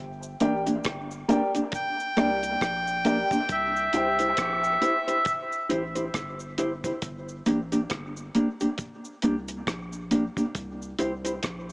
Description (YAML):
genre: dub reggae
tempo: 68 BPM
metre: 4/4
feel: swing 58% on 16ths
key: G dorian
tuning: A4 = 440 Hz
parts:
  - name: soft dub sub bass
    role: bass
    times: 0.0-11.7 s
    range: G1 to C2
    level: -38 LUFS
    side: equal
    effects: none
  - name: cabasa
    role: percussion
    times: 0.2-11.7 s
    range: none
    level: -44 LUFS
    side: equal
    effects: none
  - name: mellow electric guitar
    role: accompaniment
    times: 0.4-11.3 s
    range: Bb3 to C5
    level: -27 LUFS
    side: equal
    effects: dub echo
  - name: dark upright piano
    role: stabs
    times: 0.4-4.1 s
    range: G4 to G5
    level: -31 LUFS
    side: equal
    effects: dub echo
  - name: deep reggae drum kit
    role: drums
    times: 0.4-11.7 s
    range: hi-hat, kick drum, rim click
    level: -33 LUFS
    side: equal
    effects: none
  - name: melodica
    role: melody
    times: 1.8-5.3 s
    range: E5 to G5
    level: -26 LUFS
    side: equal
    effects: dub echo
room: moderate spring reverb, RT60 2.5 s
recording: echo-heavy mix, small speaker sound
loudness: -24 LUFS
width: side -26 dB against mid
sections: 0.0-11.7 A section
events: none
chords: 0.0 Gm; 3.5 C; 7.0 Gm; 10.6 C